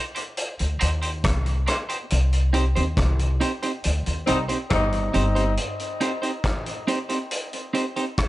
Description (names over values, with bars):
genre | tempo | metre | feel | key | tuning
dub reggae | 69 BPM | 4/4 | straight | C minor | A4 = 440 Hz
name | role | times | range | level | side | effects
clean electric guitar | accompaniment | 0.0-8.0 s | C4 to C5 | -27 LUFS | right 2 dB | high-pass filter, dub echo
vintage drum kit | drums | 0.2-8.3 s | hi-hat, kick drum, rim click | -28 LUFS | equal | none
upright bass | bass | 0.6-5.6 s | G1 to Eb2 | -22 LUFS | equal | none
mellow horn section | second line | 4.3-5.5 s | G3 to Eb4 | -28 LUFS | left 2 dB | dub echo
room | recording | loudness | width
light reverb, small room ambience | nothing above 10.8 kHz | -21 LUFS | side -16 dB against mid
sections
0.0-5.6 A section; 5.6-8.3 B section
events
band accent 2.1-5.6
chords
0.0 Cm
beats
0.37 1.23 | 2.10 2.97 3.84 4.70 | 5.57 6.44 7.31 8.17